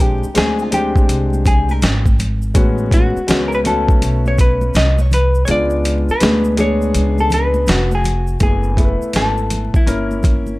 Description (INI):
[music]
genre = hip hop, jazz-hop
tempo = 82 BPM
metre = 4/4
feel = swing 65% on 16ths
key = unclear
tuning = A4 = 440 Hz
[part]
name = vintage hollow-body jazz guitar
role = melody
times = 0.0-10.6 s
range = E4 to D#5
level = -20 LUFS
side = left 1 dB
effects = none
[part]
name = warm grand piano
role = accompaniment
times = 0.0-10.6 s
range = G#3 to B4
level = -21 LUFS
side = left 2 dB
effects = none
[part]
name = upright bass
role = bass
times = 0.0-10.6 s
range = E#1 to D2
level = -18 LUFS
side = equal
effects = none
[part]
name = boom bap sampler-style drum kit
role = drums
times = 0.0-10.5 s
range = hi-hat, kick drum, snare drum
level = -16 LUFS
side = equal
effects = none
[part]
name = tube shaker and congas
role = percussion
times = 0.2-10.6 s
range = none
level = -30 LUFS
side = right 1 dB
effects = none
[sound]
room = studio reverb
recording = vinyl crackle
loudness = -13 LUFS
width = side -20 dB against mid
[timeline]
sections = 0.0-8.4 A section; 8.4-10.6 B section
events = hollow-body jazz guitar solo 0.0-8.4; kick muted 5.5-8.4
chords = 0.0 A#13 (rootless); 2.6 Amaj13; 5.5 C#7b9; 8.4 F#m11; 9.9 Gdim7